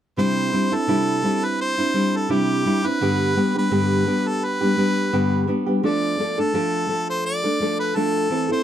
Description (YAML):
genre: pop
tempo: 85 BPM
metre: 4/4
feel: swing 55% on 16ths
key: C major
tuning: A4 = 440 Hz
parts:
  - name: clear harmonica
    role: melody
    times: 0.2-8.6 s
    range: G4 to D5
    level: -24 LUFS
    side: equal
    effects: none
  - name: nylon-string guitar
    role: accompaniment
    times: 0.2-8.6 s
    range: G2 to A4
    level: -20 LUFS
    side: equal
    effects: none
room: little or no reverb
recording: close, detailed microphones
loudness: -19 LUFS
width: side -10 dB against mid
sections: 0.2-8.6 A section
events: none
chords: 0.2 Cadd9; 3.0 G; 5.8 Dm/F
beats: | 0.18 0.89 1.59 2.30 | 3.01 3.72 4.42 5.13 | 5.84 6.54 7.25 7.96